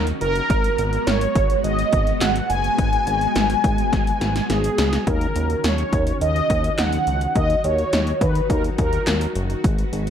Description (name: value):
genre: synth-pop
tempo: 105 BPM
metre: 4/4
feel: straight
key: unclear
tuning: A4 = 440 Hz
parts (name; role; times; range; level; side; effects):
- mellow synth brass; melody; 0.0-9.3 s; G#4 to G#5; -22 LUFS; equal; chorus, phaser, tape echo
- string machine, cellos; sustained chords; 0.0-10.1 s; D#3 to B4; -28 LUFS; equal; ensemble chorus
- fat analog bass; bass; 0.0-10.1 s; F#1 to D#2; -23 LUFS; equal; none
- 80s electronic pad drums; drums; 0.1-10.1 s; handclaps, hi-hat, kick drum, snare drum; -23 LUFS; equal; overdrive
room: light reverb, digital ambience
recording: dark, warm production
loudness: -18 LUFS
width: side -8 dB against mid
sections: 0.0-5.1 A section; 5.1-10.1 B section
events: drum fill 3.9-5.1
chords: 0.5 G#m7; 5.1 D#m7